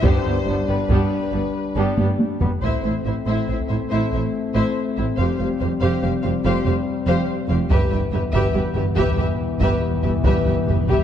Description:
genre	cinematic, epic orchestral film score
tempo	94 BPM (dotted quarters)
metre	12/8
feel	straight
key	A minor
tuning	A4 = 436 Hz
part	rich symphonic violin section	melody	0.0-11.0 s	B4 to F5	-31 LUFS	left 5 dB	none
part	warm symphonic violin section	second line	0.0-11.0 s	G3 to C5	-29 LUFS	left 2 dB	none
part	rich symphonic viola section	accompaniment	0.0-11.0 s	G3 to G4	-28 LUFS	right 1 dB	none
part	rich symphonic cello section	bass	0.0-11.0 s	F2 to A2	-25 LUFS	right 2 dB	none
part	rich symphonic double bass section	bass	0.0-11.0 s	F1 to A1	-25 LUFS	right 3 dB	none
part	taiko ensemble	drums	0.0-3.8, 7.7-11.0 s	none	-23 LUFS	equal	none
part	mellow French horn section	sustained chords	0.1-11.0 s	E3 to D4	-25 LUFS	left 5 dB	none
part	timpani	percussion	7.7-11.0 s	E2	-26 LUFS	left 1 dB	none
part	reverse cymbal	sound effects	10.7-11.0 s	none	-52 LUFS	left 1 dB	none
room	moderate scoring stage reverb, RT60 2.1 s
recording	dark, warm production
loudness	-18 LUFS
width	side -9 dB against mid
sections	0.0-2.6 A section; 2.6-11.0 B section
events	drum fill 2.0-2.6; timpani fill 7.7-11.0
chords	0.0 G; 2.6 Am; 5.2 Fsus2; 7.7 Em/G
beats	| 0.03 0.68 1.33 1.98 | 2.63 3.27 3.91 4.55 | 5.18 5.82 6.45 7.08 | 7.71 8.34 8.97 9.61 | 10.25 10.90

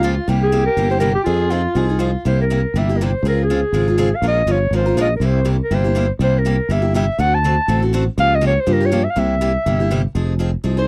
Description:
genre	acoustic string swing (jazz manouche)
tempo	243 BPM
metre	4/4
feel	swing 56% on 8ths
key	unclear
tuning	A4 = 440 Hz
part	warm clarinet	melody	0.0-10.1 s	F4 to A5	-22 LUFS	equal	none
part	growling soprano saxophone	second line	0.0-2.2, 10.8-10.9 s	F4 to C5	-25 LUFS	equal	none
part	picked steel-string acoustic guitar	accompaniment	0.0-10.9 s	C3 to Bb4	-24 LUFS	equal	none
part	sustaining fretless electric bass	bass	0.0-10.9 s	F1 to G2	-21 LUFS	equal	subtle chorus
room	light reverb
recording	dry, close 1970s-style studio recording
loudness	-17 LUFS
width	mono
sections	0.0-2.2 A section; 2.2-10.1 B section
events	none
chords	0.3 C7; 1.3 Fm7; 2.2 C7; 3.2 Dbmaj7; 4.2 Bbm11; 5.2 C7; 7.2 D7; 8.2 Gm7b5/Db; 9.2 C7; 10.1 Fm7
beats	0.03 | 0.28 0.53 0.77 1.02 | 1.26 1.51 1.76 2.00 | 2.25 2.50 2.74 2.99 | 3.23 3.48 3.73 3.97 | 4.22 4.47 4.71 4.96 | 5.21 5.46 5.70 5.95 | 6.20 6.44 6.69 6.94 | 7.18 7.43 7.68 7.93 | 8.17 8.42 8.67 8.91 | 9.16 9.41 9.65 9.90 | 10.15 10.39 10.64

